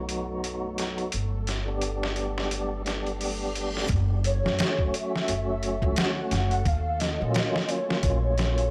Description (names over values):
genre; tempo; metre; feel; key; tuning
trip hop; 87 BPM; 4/4; swing 58% on 16ths; F# phrygian; A4 = 440 Hz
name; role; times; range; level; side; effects
tonewheel organ; accompaniment; 0.0-8.7 s; F#3 to G4; -34 LUFS; equal; overdrive, fast rotary speaker, tremolo, tape echo
string machine, cellos; sustained chords; 0.0-8.7 s; F#3 to A4; -43 LUFS; equal; none
upright bass; bass; 0.0-8.7 s; F#1 to F#2; -31 LUFS; equal; tube saturation
trip hop sampler-style drum kit; drums; 0.1-8.7 s; hi-hat, kick drum, snare drum; -31 LUFS; equal; overdrive, high-pass filter on hats, studio reverb, high-pass filter on snare, high-pass filter on kick
reverse cymbal; sound effects; 3.1-3.9 s; none; -42 LUFS; equal; none
pure breathy sine lead; melody; 4.3-8.7 s; C#5 to F#5; -33 LUFS; equal; ensemble chorus, tape echo
room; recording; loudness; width
digital ambience; dry, gritty hardware recording; -27 LUFS; mono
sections
0.0-3.9 A section; 3.9-8.7 B section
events
filter sweep on string machine 0.0-3.9; reverse cymbal 3.1-3.9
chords
0.0 B; 1.1 G; 3.9 F#m; 6.7 D#m7